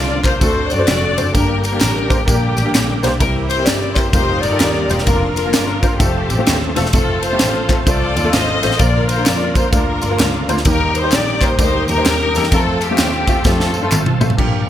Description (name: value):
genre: uptempo gospel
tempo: 129 BPM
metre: 4/4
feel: swing 63% on 8ths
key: unclear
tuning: A4 = 441 Hz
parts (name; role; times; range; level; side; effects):
- warm studio string section; melody; 0.0-14.4 s; Bb3 to Eb5; -19 LUFS; left 2 dB; none
- warm baby grand piano; accompaniment; 0.0-14.7 s; G2 to C5; -22 LUFS; left 2 dB; analog chorus
- bright tonewheel organ; sustained chords; 0.0-14.7 s; D3 to A4; -25 LUFS; right 2 dB; slow rotary speaker, overdrive, chorus vibrato
- bright double bass; bass; 0.0-14.7 s; E1 to G2; -20 LUFS; equal; none
- crisp fusion drum kit; drums; 0.2-14.5 s; crash cymbal, kick drum, ride cymbal, snare drum, toms; -18 LUFS; equal; gated reverb
- handclaps and tambourine; percussion; 0.2-14.3 s; none; -26 LUFS; left 1 dB; none
room: light reverb, small room ambience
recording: bright 1980s-style digital production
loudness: -13 LUFS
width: side -11 dB against mid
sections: 0.0-14.4 A section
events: drum fill 13.4-14.4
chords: 0.4 D7; 1.3 Gm; 3.2 C7; 4.1 F9sus4; 5.1 Bb/F; 6.0 F; 8.8 Bb; 10.7 Eb; 12.5 F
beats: 0.42 0.88 | 1.34 1.81 2.27 2.74 | 3.20 3.67 4.13 4.60 | 5.07 5.53 6.00 6.47 | 6.93 7.40 7.87 8.33 | 8.80 9.26 9.73 10.19 | 10.66 11.12 11.59 12.05 | 12.52 12.98 13.45 13.91 | 14.38